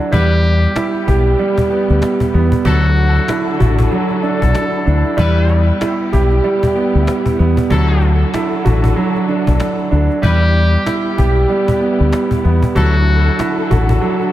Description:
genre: hip hop, boom-bap hip-hop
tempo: 95 BPM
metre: 4/4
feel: swing 59% on 16ths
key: E minor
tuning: A4 = 440 Hz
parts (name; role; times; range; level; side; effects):
- warm grand piano; accompaniment; 0.0-14.3 s; F#3 to G4; -16 LUFS; right 3 dB; cassette tape, high-pass filter, low-pass filter
- warm studio string section; sustained chords; 0.0-14.3 s; D3 to A4; -23 LUFS; left 3 dB; high-pass filter, low-pass filter
- cajon; drums; 0.0-14.3 s; none; -22 LUFS; left 1 dB; none
- trumpet with metal mute; melody; 0.1-5.1, 10.2-13.5 s; F#4 to A4; -23 LUFS; left 2 dB; high-pass filter, low-pass filter, diffuse ambient delay
- brilliant trumpet section; stabs; 0.1-13.0 s; F#3 to B4; -27 LUFS; left 3 dB; high-pass filter, low-pass filter, diffuse ambient delay
- deep dub fingered electric bass; bass; 0.1-14.0 s; A1 to E2; -13 LUFS; left 1 dB; none
room: moderate plate reverb, RT60 2.8 s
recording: dreamy mix soaked in reverb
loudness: -12 LUFS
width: side -14 dB against mid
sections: 0.1-14.3 A section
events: none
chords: 0.1 Em; 2.7 Dadd9; 5.2 Em; 7.7 Dadd9; 10.2 Em; 12.8 Dadd9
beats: | 0.13 0.76 1.39 2.02 | 2.65 3.28 3.92 4.55 | 5.18 5.81 6.44 7.07 | 7.71 8.34 8.97 9.60 | 10.23 10.86 11.49 12.13 | 12.76 13.39 14.02

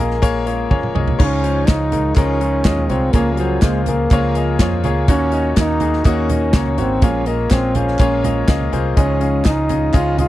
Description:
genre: piano-driven pop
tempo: 124 BPM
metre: 4/4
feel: straight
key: Bb minor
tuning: A4 = 441 Hz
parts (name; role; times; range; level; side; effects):
- breathy trombone; melody; 0.0-10.3 s; Gb3 to F4; -20 LUFS; equal; slapback echo
- bright concert grand piano; accompaniment; 0.0-10.3 s; Ab2 to Bb5; -22 LUFS; left 6 dB; none
- fingerpicked steel-string acoustic guitar; riff; 0.0-10.3 s; Bb2 to Ab4; -25 LUFS; right 7 dB; none
- vintage muted fingered electric bass; bass; 0.0-10.3 s; F1 to F2; -20 LUFS; equal; none
- natural country drum kit; drums; 0.1-10.3 s; crash cymbal, hi-hat, kick drum, snare drum, toms; -17 LUFS; equal; none
- group handclap; percussion; 1.7-10.1 s; none; -32 LUFS; right 3 dB; none
room: little or no reverb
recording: dry, close 1970s-style studio recording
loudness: -14 LUFS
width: side -15 dB against mid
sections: 0.0-1.2 A section; 1.2-10.3 B section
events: grand piano fill 0.2-1.2; drum fill 0.7-1.2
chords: 0.0 Bbm7; 1.2 Dbadd9; 3.1 Bbm7/Db; 5.1 Ebm7; 7.0 Bbm7; 9.0 Dbadd9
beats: 0.23 0.71 | 1.20 1.69 2.17 2.66 | 3.14 3.63 4.11 4.60 | 5.08 5.57 6.05 6.54 | 7.03 7.51 8.00 8.48 | 8.97 9.45 9.94

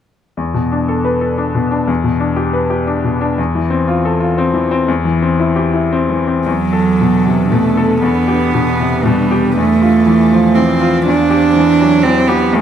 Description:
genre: neoclassical piano and strings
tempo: 119 BPM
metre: 3/4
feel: rubato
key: unclear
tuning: A4 = 440 Hz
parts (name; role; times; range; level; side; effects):
- bright grand piano; accompaniment; 0.4-12.6 s; E2 to B4; -14 LUFS; left 3 dB; none
- warm cello; second line; 6.5-12.6 s; F#3 to D4; -12 LUFS; right 5 dB; none
- glassy FM pad; sustained chords; 7.1-12.6 s; C4 to F5; -23 LUFS; equal; ensemble chorus, built-in reverb
room: moderate plate reverb, RT60 2.8 s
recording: none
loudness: -11 LUFS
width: side -9 dB against mid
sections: 0.4-6.5 A section; 6.5-12.6 B section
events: none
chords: 0.4 Bm7/E; 1.9 Em7; 3.4 Fmaj7/E; 4.9 C/E; 6.5 Bm7/E; 8.0 Em7; 9.5 Fmaj7/E; 11.1 C/E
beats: | 0.38 0.89 1.39 | 1.89 2.38 2.88 | 3.38 3.87 4.36 | 4.87 5.39 5.92 | 6.46 7.00 7.51 | 8.02 8.53 9.04 | 9.55 10.06 10.56 | 11.06 11.55 12.04 | 12.54

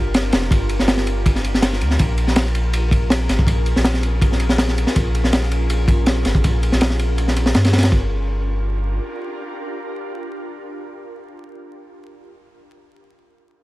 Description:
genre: drum and bass, jungle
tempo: 162 BPM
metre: 4/4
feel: straight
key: G minor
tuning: A4 = 441 Hz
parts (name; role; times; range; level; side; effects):
- ethereal airy pad; sustained chords; 0.0-11.5 s; Db4 to Bb4; -28 LUFS; left 1 dB; ensemble chorus, built-in reverb
- soft dub sub bass; bass; 0.0-9.0 s; F1 to G2; -19 LUFS; equal; tube saturation
- crunchy breakbeat drum kit; drums; 0.1-8.0 s; kick drum, ride cymbal, snare drum; -18 LUFS; equal; none
room: small room ambience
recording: vinyl crackle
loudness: -16 LUFS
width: side -18 dB against mid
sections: 0.0-7.9 A section; 7.9-10.9 B section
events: none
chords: 0.0 Gm7; 2.0 Bbm7; 7.9 Gm7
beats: 0.14 | 0.51 0.88 1.25 1.62 | 1.99 2.36 2.73 3.10 | 3.47 3.84 4.21 4.58 | 4.96 5.33 5.70 6.07 | 6.44 6.81 7.18 7.55 | 7.92 8.29 8.66 9.03 | 9.40 9.77 10.14 10.51

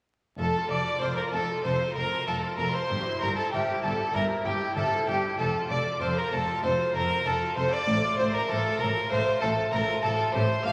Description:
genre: classical, baroque-style concerto movement with solo episodes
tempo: 97 BPM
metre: 4/4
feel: straight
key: F major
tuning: A4 = 439 Hz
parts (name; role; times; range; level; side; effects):
- clear violin; melody; 0.4-10.7 s; G4 to F5; -31 LUFS; equal; none
- warm chamber violin section; melody; 0.4-10.7 s; G5 to F6; -37 LUFS; equal; none
- rich symphonic violin section; second line; 0.4-10.7 s; G4 to F5; -35 LUFS; equal; none
- harpsichord; accompaniment; 0.4-10.7 s; F2 to Bb4; -37 LUFS; equal; none
- rich chamber viola section; accompaniment; 0.4-10.7 s; E4 to A4; -40 LUFS; equal; none
- clear chamber double bass section; bass; 0.4-10.7 s; F1 to A1; -36 LUFS; equal; none
- rich chamber cello section; bass; 0.4-10.7 s; F2 to A2; -37 LUFS; equal; none
room: wet scoring stage reverb, RT60 2.0 s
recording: vinyl crackle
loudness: -27 LUFS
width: mono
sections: 0.4-10.7 A section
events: none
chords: 0.4 F; 2.9 C7/G; 5.4 F; 7.9 F/A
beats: | 0.39 1.02 1.65 2.27 | 2.90 3.52 4.14 4.76 | 5.39 6.01 6.63 7.25 | 7.87 8.49 9.11 9.72 | 10.34

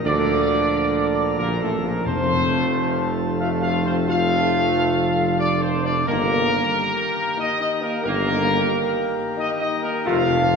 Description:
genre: classical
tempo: 90 BPM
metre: 3/4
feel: straight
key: unclear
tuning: A4 = 440 Hz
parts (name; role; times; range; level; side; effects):
- chamber organ, principal chorus; sustained chords; 0.0-10.6 s; Bb2 to Bb4; -27 LUFS; right 1 dB; none
- dark French horn section; sustained chords; 0.0-10.6 s; A3 to F4; -26 LUFS; left 3 dB; none
- mellow tuba; bass; 0.0-10.6 s; F1 to D2; -24 LUFS; right 2 dB; none
- mellow trumpet section; melody; 0.1-10.6 s; A4 to F5; -23 LUFS; equal; none
- clear trombone section; sustained chords; 0.1-10.3 s; A2 to Bb3; -30 LUFS; right 2 dB; none
- timpani; percussion; 2.1-3.0, 10.1-10.6 s; F2; -31 LUFS; left 4 dB; none
room: wet concert hall reverb, RT60 2.2 s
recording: minimal, uncompressed stereo recording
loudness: -18 LUFS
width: side -5 dB against mid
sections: 0.0-10.6 A section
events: timpani fill 10.1-10.6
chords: 0.1 Bb/D; 2.1 F; 6.1 Eb/G; 10.1 F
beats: | 0.05 0.72 1.39 | 2.06 2.73 3.40 | 4.08 4.75 5.40 | 6.06 6.72 7.38 | 8.05 8.71 9.37 | 10.06

